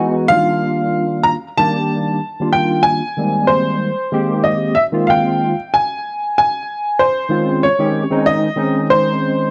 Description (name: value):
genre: jazz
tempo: 94 BPM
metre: 4/4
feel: swing 55% on 16ths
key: unclear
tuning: A4 = 439 Hz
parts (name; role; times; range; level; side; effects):
- bright baby grand piano; melody; 0.0-9.5 s; C5 to Bb5; -19 LUFS; equal; none
- barky tine electric piano; accompaniment; 0.0-9.5 s; Eb3 to G4; -19 LUFS; equal; ensemble chorus
room: small room reverb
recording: dry, close 1970s-style studio recording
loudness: -16 LUFS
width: mono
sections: 0.0-5.7 A section; 5.7-9.5 B section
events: none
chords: 0.3 F13sus4; 3.2 Bb13sus4; 5.7 Eb7sus4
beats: 0.00 | 0.64 1.27 1.91 2.55 | 3.18 3.82 4.46 5.09 | 5.73 6.36 7.00 7.63 | 8.27 8.90